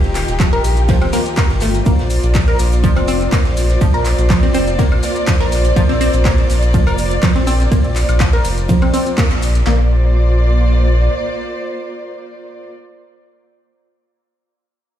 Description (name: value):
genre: progressive house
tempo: 123 BPM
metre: 4/4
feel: straight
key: Bb major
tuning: A4 = 444 Hz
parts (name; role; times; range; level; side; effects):
- dark chamber string section; sustained chords; 0.0-12.7 s; Eb3 to D5; -21 LUFS; equal; sidechain pumping
- round analog bass; bass; 0.0-11.1 s; Eb1 to Bb1; -15 LUFS; equal; tube saturation, sidechain pumping
- deep house drum kit; drums; 0.0-9.6 s; handclaps, hi-hat, ride cymbal, woodblock; -26 LUFS; equal; overdrive, sidechain pumping on hats, sidechain pumping on cymbals, sidechain pumping on perc
- maracas; percussion; 0.1-9.6 s; none; -33 LUFS; left 6 dB; none
- compact cocktail drum kit; drums; 0.2-9.5 s; hi-hat, shaker, snare drum; -32 LUFS; equal; none
- wide unison pluck; arpeggios; 0.4-9.9 s; F3 to Bb4; -20 LUFS; equal; sidechain pumping, dub echo
- deep house drum kit; drums; 0.4-9.8 s; handclaps, kick drum, snare drum; -15 LUFS; equal; none
room: light reverb, small room ambience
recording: played on a big sound system in a bare room, large studio reverb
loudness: -12 LUFS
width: side -10 dB against mid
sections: 0.0-9.7 A section; 9.7-13.6 B section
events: drop 0.0-9.7; band accent 9.2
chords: 0.0 Ebadd9; 1.9 Bbadd9